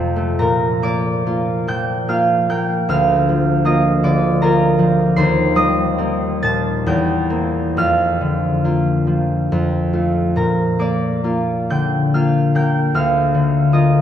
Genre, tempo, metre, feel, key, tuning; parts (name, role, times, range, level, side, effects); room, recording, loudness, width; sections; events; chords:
classical, solo harp piece; 59-80 BPM; 3/4; rubato; Bb major; A4 = 435 Hz
concert harp; solo; 0.0-14.0 s; D2 to A6; -14 LUFS; equal
wet cathedral reverb, RT60 5.1 s; -15 LUFS; side -10 dB against mid
0.4-14.0 A section
0.4 Bb; 2.9 Bb/D; 5.2 Cm7/Eb; 6.9 C7/E; 7.8 Bb/F; 9.5 F; 10.4 Bb; 12.9 Bb/D